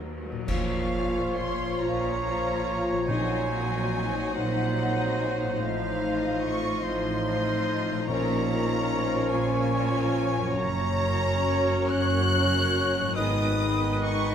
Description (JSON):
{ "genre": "classical, slow romantic movement for symphony orchestra", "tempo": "48 BPM (dotted quarters)", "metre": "6/8", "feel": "rubato", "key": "Bb minor", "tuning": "A4 = 439 Hz", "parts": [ { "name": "rich studio viola section", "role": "accompaniment", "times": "0.0-14.3 s", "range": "Gb3 to Gb4", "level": "-36 LUFS", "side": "equal", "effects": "none" }, { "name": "concert harp", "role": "arpeggios", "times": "0.0-14.3 s", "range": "Gb2 to Eb6", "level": "-39 LUFS", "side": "left 9 dB", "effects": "none" }, { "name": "rich studio cello section", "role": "bass", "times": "0.0-14.3 s", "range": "Eb2 to Bb2", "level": "-33 LUFS", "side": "right 2 dB", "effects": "none" }, { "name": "rich studio double bass section", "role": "bass", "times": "0.0-14.3 s", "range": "Gb1 to Eb2", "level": "-32 LUFS", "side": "right 4 dB", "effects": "none" }, { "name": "rich studio violin section", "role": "melody", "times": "0.5-14.3 s", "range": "F5 to Gb6", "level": "-34 LUFS", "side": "left 2 dB", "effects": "none" }, { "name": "dark clarinet", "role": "second line", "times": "0.5-14.3 s", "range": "Db4 to F4", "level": "-34 LUFS", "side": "left 2 dB", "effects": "none" }, { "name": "mellow large flute ensemble", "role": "second line", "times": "0.5-14.3 s", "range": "F5 to Gb6", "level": "-36 LUFS", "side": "left 2 dB", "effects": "none" }, { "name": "warm oboe", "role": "second line", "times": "0.5-14.3 s", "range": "Cb5 to Db5", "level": "-37 LUFS", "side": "equal", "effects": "none" }, { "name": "mellow bassoon", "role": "accompaniment", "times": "0.5-14.3 s", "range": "Eb3 to Gb3", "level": "-35 LUFS", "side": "right 1 dB", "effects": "none" }, { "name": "dark French horn section", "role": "sustained chords", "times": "0.5-14.3 s", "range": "Eb3 to F4", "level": "-33 LUFS", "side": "left 5 dB", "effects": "none" }, { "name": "mellow trumpet", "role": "stabs", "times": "0.5-14.3 s", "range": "Cb5 to Db5", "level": "-34 LUFS", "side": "right 3 dB", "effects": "none" }, { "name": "clash cymbals and concert bass drum", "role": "percussion", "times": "0.5-2.2 s", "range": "none", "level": "-35 LUFS", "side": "equal", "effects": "none" }, { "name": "rich studio violin section", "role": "second line", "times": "1.0-14.3 s", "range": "F4 to Eb5", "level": "-36 LUFS", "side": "left 1 dB", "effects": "none" }, { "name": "timpani", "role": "percussion", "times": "3.1-9.3 s", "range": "Bb2", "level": "-36 LUFS", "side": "equal", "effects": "none" } ], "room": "wet recital hall reverb, RT60 1.5 s", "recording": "none", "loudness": "-24 LUFS", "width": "side -8 dB against mid", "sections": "0.5-14.3 A section", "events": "band accent 0.5-1.4", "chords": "0.5 Bbm; 3.1 Cm7b5/Bb; 5.6 F7/A; 8.1 Bbm; 10.5 Gb; 13.2 Abm", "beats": "| 0.48 1.82 | 3.09 4.34 | 5.59 6.84 | 8.08 9.32 | 10.55 11.89 | 13.16" }